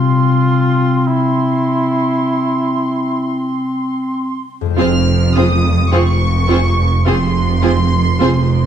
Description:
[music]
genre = classical, slow romantic movement for symphony orchestra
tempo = 47-53 BPM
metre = 4/4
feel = rubato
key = F minor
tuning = A4 = 439 Hz
[part]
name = bright flute section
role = second line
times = 0.0-4.4 s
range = C6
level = -24 LUFS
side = right 1 dB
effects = none
[part]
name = clear clarinet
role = second line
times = 0.0-4.4 s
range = C4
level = -18 LUFS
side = equal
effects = none
[part]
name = mellow cor anglais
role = second line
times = 0.0-3.6 s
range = E4 to F4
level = -19 LUFS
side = right 2 dB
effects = none
[part]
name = concert harp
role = arpeggios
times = 0.0-8.6 s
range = F2 to G4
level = -19 LUFS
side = left 5 dB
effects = none
[part]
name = warm symphonic violin section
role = melody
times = 4.8-8.7 s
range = C6 to F6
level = -21 LUFS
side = equal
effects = none
[part]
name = rich chamber violin section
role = second line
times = 4.8-8.3 s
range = Ab4 to C5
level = -23 LUFS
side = left 1 dB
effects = none
[part]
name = rich symphonic viola section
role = accompaniment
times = 4.8-8.3 s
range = C4 to F4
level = -19 LUFS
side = right 2 dB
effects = none
[part]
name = rich symphonic cello section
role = bass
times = 4.8-8.7 s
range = F2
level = -17 LUFS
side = right 3 dB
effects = none
[part]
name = warm symphonic double bass section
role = bass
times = 4.8-8.7 s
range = F1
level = -17 LUFS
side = right 3 dB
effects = none
[sound]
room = wet recital hall reverb, RT60 1.4 s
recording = dark, warm production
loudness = -13 LUFS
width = side -8 dB against mid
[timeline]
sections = 0.0-4.8 A section; 4.8-8.7 A section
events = none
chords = 0.0 C; 4.8 Fm

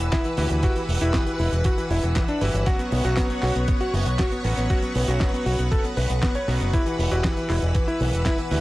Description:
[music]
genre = italo disco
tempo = 118 BPM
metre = 4/4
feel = straight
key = unclear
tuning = A4 = 441 Hz
[part]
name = warm electric grand piano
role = melody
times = 0.0-8.6 s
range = E3 to C#5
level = -27 LUFS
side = left 1 dB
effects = analog delay
[part]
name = string machine, full ensemble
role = sustained chords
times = 0.0-8.6 s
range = B4 to E6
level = -31 LUFS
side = equal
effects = ensemble chorus
[part]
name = bright electric grand piano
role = stabs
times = 0.0-8.6 s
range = F#3 to B4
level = -32 LUFS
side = right 1 dB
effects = none
[part]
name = fingered electric bass with an envelope filter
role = bass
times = 0.0-8.6 s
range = E1 to D2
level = -24 LUFS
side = equal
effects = tube saturation
[part]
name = damped 70s drum kit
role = drums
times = 0.0-8.6 s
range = cabasa, handclaps, hi-hat, snare drum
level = -31 LUFS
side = right 1 dB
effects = none
[part]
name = electronic kick drum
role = drums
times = 0.1-8.4 s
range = none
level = -24 LUFS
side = equal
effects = none
[sound]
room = studio reverb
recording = dry, gritty hardware recording, transformer saturation, cassette tape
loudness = -20 LUFS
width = side -18 dB against mid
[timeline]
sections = 0.0-8.6 A section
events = none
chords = 0.0 Emadd9; 2.7 Bsus2; 6.7 Emadd9

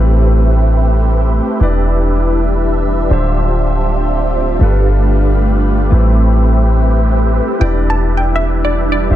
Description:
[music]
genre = future bass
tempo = 160 BPM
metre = 4/4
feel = swing 54% on 16ths, half-time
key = A minor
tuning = A4 = 442 Hz
[part]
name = dark baby grand piano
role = accompaniment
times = 0.0-9.2 s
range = D3 to E5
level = -22 LUFS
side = left 3 dB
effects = tape echo
[part]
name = ethereal airy pad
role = sustained chords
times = 0.0-9.2 s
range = D3 to E5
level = -25 LUFS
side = equal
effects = ensemble chorus, built-in reverb
[part]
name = supersaw chords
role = riff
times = 0.0-9.2 s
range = A3 to F5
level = -18 LUFS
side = right 1 dB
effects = phaser, low-pass filter, tape echo
[part]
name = warm 808-style bass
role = bass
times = 0.0-9.2 s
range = D1 to A1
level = -12 LUFS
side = equal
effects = none
[part]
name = wide unison pluck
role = melody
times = 7.6-9.2 s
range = D5 to A5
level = -19 LUFS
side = equal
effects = vintage 12-bit sampler grit, dub echo
[sound]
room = digital ambience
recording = none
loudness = -11 LUFS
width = side -12 dB against mid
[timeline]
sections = 0.0-9.2 A section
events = none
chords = 0.0 Am9; 1.6 Em7; 3.1 Dm11; 4.6 G9; 5.9 Am9; 7.6 Em7

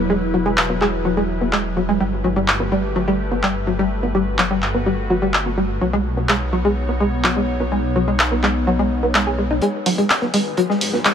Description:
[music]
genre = melodic techno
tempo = 126 BPM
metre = 4/4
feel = straight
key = unclear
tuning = A4 = 437 Hz
[part]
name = evolving wavetable pad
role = sustained chords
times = 0.0-11.1 s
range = F#3 to C#5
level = -25 LUFS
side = equal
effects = chorus, built-in reverb
[part]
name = analog pluck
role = arpeggios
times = 0.0-11.1 s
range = F#3 to G#4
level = -20 LUFS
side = equal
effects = lush chorus, digital delay
[part]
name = dark detuned saw bass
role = bass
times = 0.0-11.0 s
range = E1 to G#2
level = -24 LUFS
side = equal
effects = tube saturation, high-pass filter
[part]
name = punchy analog drum machine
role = drums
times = 0.6-11.1 s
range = handclaps, hi-hat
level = -22 LUFS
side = equal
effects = none
[part]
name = crunchy breakbeat drum kit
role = drums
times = 9.6-11.1 s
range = hi-hat, snare drum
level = -31 LUFS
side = equal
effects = high-pass filter on hats, high-pass filter on snare, high-pass filter on room
[part]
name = riser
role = sound effects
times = 10.2-11.1 s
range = none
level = -38 LUFS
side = left 2 dB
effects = none
[sound]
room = light reverb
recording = none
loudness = -16 LUFS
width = side -8 dB against mid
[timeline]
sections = 0.0-9.6 A section; 9.6-11.1 B section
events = build-up 9.6-11.1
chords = 0.0 Esus2; 2.0 Gadd9; 5.8 Badd9; 9.6 G#m

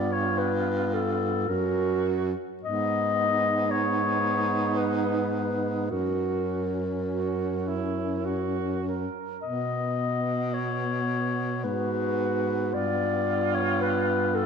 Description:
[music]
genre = classical, lyrical piece for single-reed quartet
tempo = 50-57 BPM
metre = 3/4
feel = rubato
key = unclear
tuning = A4 = 440 Hz
[part]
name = mellow clarinet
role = melody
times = 0.0-14.5 s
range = A4 to D#5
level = -28 LUFS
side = left 4 dB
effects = none
[part]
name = warm alto saxophone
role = second line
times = 0.0-14.5 s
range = D#4 to A#4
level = -31 LUFS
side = right 9 dB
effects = none
[part]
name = mellow tenor saxophone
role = accompaniment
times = 0.0-14.5 s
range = B3 to C#4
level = -33 LUFS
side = left 4 dB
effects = none
[part]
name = clear baritone saxophone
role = bass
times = 0.0-14.5 s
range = F#2 to B2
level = -30 LUFS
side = right 2 dB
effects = none
[sound]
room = moderate concert hall reverb, RT60 1.8 s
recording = dark, warm production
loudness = -24 LUFS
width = side -6 dB against mid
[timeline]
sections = 0.0-14.5 A section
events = none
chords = 0.0 G7; 1.5 F#; 2.6 G#m; 5.9 F#; 9.4 B; 11.6 G#m7; 12.7 G7

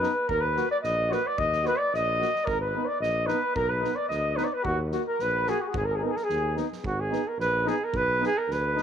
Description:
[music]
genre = balkan folk, Balkan brass band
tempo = 110 BPM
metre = 2/4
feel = straight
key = unclear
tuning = A4 = 438 Hz
[part]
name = warm flugelhorn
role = melody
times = 0.0-8.8 s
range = Gb4 to Eb5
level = -26 LUFS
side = right 2 dB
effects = none
[part]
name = dark trumpet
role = second line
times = 0.0-6.6 s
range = Gb4 to Eb5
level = -32 LUFS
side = left 10 dB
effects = tape echo
[part]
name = bright trombone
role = accompaniment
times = 0.0-8.8 s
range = Eb4 to Gb4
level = -36 LUFS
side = left 13 dB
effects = none
[part]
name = mellow euphonium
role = accompaniment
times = 0.0-8.8 s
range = Bb3 to B3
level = -36 LUFS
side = right 13 dB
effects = none
[part]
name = warm tuba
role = bass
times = 0.0-8.8 s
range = Ab1 to Eb2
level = -32 LUFS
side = equal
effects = none
[part]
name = soft-mallet drum kit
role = percussion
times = 0.0-8.8 s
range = kick drum, snare drum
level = -40 LUFS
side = right 2 dB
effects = none
[sound]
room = moderate plate reverb, RT60 2.7 s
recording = 1960s-style stereo with parts hard left and right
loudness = -24 LUFS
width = side -8 dB against mid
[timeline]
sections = 0.0-6.8 A section; 6.8-8.8 A section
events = none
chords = 0.3 Ebm; 2.5 Abm; 3.6 B; 4.7 Ebm; 5.7 Abm; 7.9 B

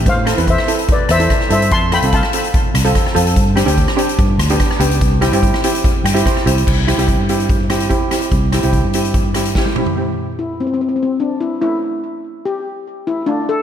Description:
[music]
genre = calypso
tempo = 145 BPM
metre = 4/4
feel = straight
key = C major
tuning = A4 = 440 Hz
[part]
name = steel pan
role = melody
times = 0.0-3.1, 10.4-13.6 s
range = C4 to C6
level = -18 LUFS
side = left 3 dB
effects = slapback echo, ping-pong delay
[part]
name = steel pan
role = accompaniment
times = 0.0-13.6 s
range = A3 to G5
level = -19 LUFS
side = right 2 dB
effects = slapback echo
[part]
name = fingered electric bass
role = bass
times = 0.0-9.5 s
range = C2 to A2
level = -17 LUFS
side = equal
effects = none
[part]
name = street-band drum kit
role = drums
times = 0.1-10.0 s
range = crash cymbal, hi-hat, kick drum, rim click, snare drum, toms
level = -17 LUFS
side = equal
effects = none
[sound]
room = light reverb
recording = none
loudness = -13 LUFS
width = side -9 dB against mid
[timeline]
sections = 0.0-6.7 A section; 6.7-10.0 B section; 10.0-13.6 C section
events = steel pan fill 5.8-6.7; drum fill 9.6-10.0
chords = 0.1 Am; 1.7 F; 3.4 Gsus4; 4.2 G; 5.0 C; 11.6 A

